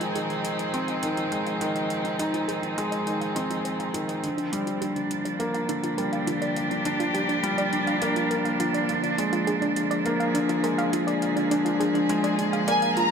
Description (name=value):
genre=piano and strings electronica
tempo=103 BPM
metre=4/4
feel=straight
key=F dorian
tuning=A4 = 441 Hz
part: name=rich string quartet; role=sustained chords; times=0.0-13.1 s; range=F3 to Ab4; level=-28 LUFS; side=right 1 dB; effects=none
part: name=soft round pluck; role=arpeggios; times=0.0-13.1 s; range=D4 to F5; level=-32 LUFS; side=right 2 dB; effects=chorus, ping-pong delay
part: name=felt-muted upright piano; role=riff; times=0.0-13.1 s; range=D3 to Eb4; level=-27 LUFS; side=left 1 dB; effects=ping-pong delay
part: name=electronic hi-hat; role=drums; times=0.0-13.1 s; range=none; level=-38 LUFS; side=right 1 dB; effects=overdrive, studio reverb
part: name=warm symphonic violin section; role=melody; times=12.7-13.1 s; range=Ab5 to Bb5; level=-21 LUFS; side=equal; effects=none
room=moderate huge ambient reverb, RT60 4.6 s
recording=none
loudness=-23 LUFS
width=side -6 dB against mid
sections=0.0-13.1 A section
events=build-up 0.0-13.1; filter sweep on synth arpeggio sound 0.0-13.1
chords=0.0 Fm7; 4.2 Gm7; 8.9 Bb7